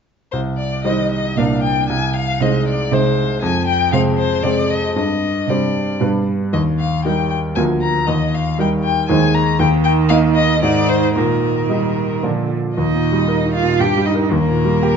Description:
quick classical-period movement for piano trio; 116 BPM; 3/4; rubato; C minor, Eb major from 6.5 s; A4 = 444 Hz
rich violin; melody; 0.3-15.0 s; Bb4 to Bb5; -21 LUFS; left 6 dB
clear grand piano; accompaniment; 0.3-15.0 s; C2 to Eb5; -17 LUFS; equal
rich cello; second line; 0.9-15.0 s; Bb2 to G4; -21 LUFS; right 9 dB
moderate recital hall reverb, RT60 1.7 s; dark, warm production, nothing above 7.6 kHz; -15 LUFS; side -6 dB against mid
0.3-12.8 A section; 12.8-15.0 B section
0.3 Cm; 1.4 Gm/C; 1.9 Ab/C; 3.4 Fm; 5.0 Gsus4; 6.0 G; 6.5 Eb; 7.6 Bb/D; 8.1 Eb; 9.1 Ab/Eb; 9.6 Eb5; 10.6 Ab; 11.1 Eb/Bb; 12.2 Bb; 12.8 Eb; 13.8 Eb/G; 14.3 Eb

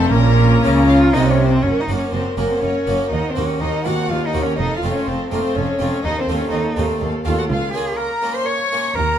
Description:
classical, baroque-style concerto movement with solo episodes; 123 BPM; 3/4; straight; Bb minor; A4 = 440 Hz
rich cello; melody; 0.0-9.2 s; A3 to Db5; -23 LUFS; left 1 dB
rich studio violin section; melody; 0.0-8.8 s; F5 to Bb5; -34 LUFS; left 4 dB
rich chamber violin section; second line; 0.0-9.2 s; A4 to Db6; -26 LUFS; left 2 dB
harpsichord; accompaniment; 0.0-9.2 s; Db2 to Gb4; -23 LUFS; equal
rich chamber viola section; accompaniment; 0.0-8.8 s; C4 to Bb4; -25 LUFS; left 1 dB
clear chamber double bass section; bass; 0.0-9.2 s; F1 to Eb2; -22 LUFS; right 4 dB
warm chamber cello section; bass; 0.0-9.2 s; Db2 to Db3; -21 LUFS; equal
moderate recital hall reverb, RT60 1.7 s; close, detailed microphones; -16 LUFS; side -10 dB against mid
0.0-1.6 A section; 1.6-9.2 B section
0.1 Bbm; 1.6 Gb; 3.1 Cm7b5/Eb; 4.6 F; 6.0 F7/Eb; 7.5 Bbm/Db

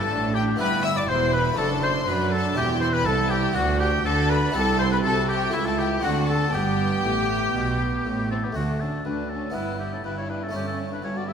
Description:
classical, baroque-style concerto movement with solo episodes; 121 BPM; 4/4; straight; G major; A4 = 439 Hz
clear oboe; melody; 0.0-11.3 s; E4 to E5; -28 LUFS; left 2 dB
rich chamber violin section; melody; 0.0-11.3 s; E5 to E6; -30 LUFS; left 4 dB
warm symphonic violin section; second line; 0.0-11.3 s; A3 to E5; -29 LUFS; left 3 dB
harpsichord; accompaniment; 0.0-11.3 s; C2 to G4; -30 LUFS; right 1 dB
warm symphonic viola section; accompaniment; 0.0-11.3 s; B3 to F#4; -31 LUFS; right 2 dB
rich studio double bass section; bass; 0.0-11.3 s; E1 to F#2; -29 LUFS; right 3 dB
warm studio cello section; bass; 0.0-11.3 s; C2 to F#3; -30 LUFS; right 3 dB
wet concert hall reverb, RT60 2.4 s; minimal, uncompressed stereo recording; -21 LUFS; side -7 dB against mid
0.0-8.6 A section; 8.6-11.3 B section
0.0 G; 0.6 Em/G; 1.6 D/F#; 2.6 C/E; 3.6 Bm/D; 4.5 Am7/C; 5.5 A7/C#; 6.0 D7; 6.5 G; 8.6 D5; 9.6 Em/G; 10.5 A7/G

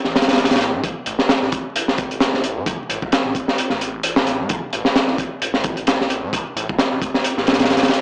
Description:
breakbeat, breaks; 131 BPM; 4/4; swing 56% on 16ths; A4 = 440 Hz
phased detuned saw bass; bass; 0.0-8.0 s; A1 to A2; -31 LUFS; equal; phaser, tube saturation
crunchy breakbeat drum kit; drums; 0.0-8.0 s; hi-hat, kick drum, snare drum; -20 LUFS; equal
moderate studio ambience, RT60 0.5 s; dry, gritty hardware recording, vinyl crackle, small speaker sound; -20 LUFS; mono
0.0-8.0 A section

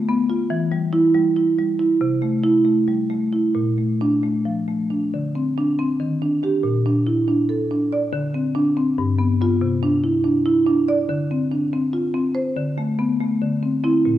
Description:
classical, contemporary piece for solo marimba; 281 BPM (eighths); 7/8; rubato; A4 = 440 Hz
marimba with soft mallets; solo; 0.0-14.2 s; G2 to D5; -18 LUFS; equal
wet recital hall reverb, RT60 1.4 s; dark, warm production; -18 LUFS; side -12 dB against mid
0.0-5.1 A section; 5.1-14.2 B section
0.0 Dm6; 0.5 Em; 2.0 C6; 3.5 Bbmaj7; 5.1 Csus2/D; 6.0 Ebmaj7; 6.6 Bbmaj7; 8.1 Csus2/D; 9.0 G7; 9.6 Cadd9; 11.1 Dm7; 12.6 D5; 13.4 Cadd9/D

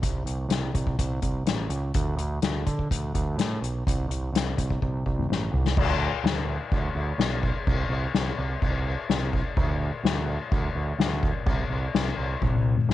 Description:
psychedelic rock; 126 BPM; 4/4; straight; A4 = 440 Hz
growling picked electric bass; bass; 0.0-12.9 s; A1 to D3; -28 LUFS; right 1 dB; overdrive
soft-mallet drum kit; drums; 0.0-12.9 s; crash cymbal, hi-hat, kick drum, snare drum, toms; -26 LUFS; left 2 dB
little or no reverb; 1960s-style stereo, nothing above 11.0 kHz; -24 LUFS; side -14 dB against mid
0.0-5.8 A section; 5.8-12.9 B section
drum fill 4.8-5.8, 12.4-12.9

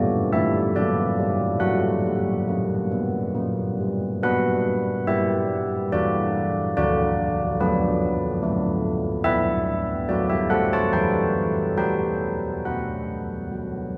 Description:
classical, tune for church bells; 70 BPM; 3/4; straight; B minor; A4 = 439 Hz
carillon bells; solo; 0.0-14.0 s; D3 to A5; -23 LUFS; equal
wet cathedral reverb, RT60 6.0 s; recorded in a church or concert hall; -23 LUFS; mono
0.0-4.2 A section; 4.2-14.0 B section
0.0 G; 1.6 F#; 4.2 Bm; 6.8 Bm/D; 9.2 B5; 10.9 Em; 11.8 B5/F#

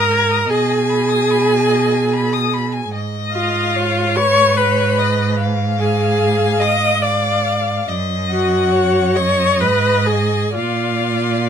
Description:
classical, slow romantic movement for string quartet; 60-76 BPM; 3/4; rubato; Eb minor; A4 = 441 Hz
rich violin; melody; 0.0-11.5 s; F5 to Eb6; -23 LUFS; left 8 dB
warm violin; second line; 0.0-11.5 s; Cb5 to G#6; -23 LUFS; left 6 dB
rich viola; accompaniment; 0.0-11.5 s; F4 to Eb5; -17 LUFS; equal
clear cello; bass; 0.0-11.5 s; Gb2 to B2; -20 LUFS; right 4 dB
little or no reverb; close, detailed microphones; -14 LUFS; side -8 dB against mid
0.0-11.5 A section
0.0 G#5; 0.5 G#m/B; 2.9 Fm7b5/Ab; 5.4 Ddim/Ab; 7.9 Ebm/Gb; 9.6 Abm; 10.6 Bb

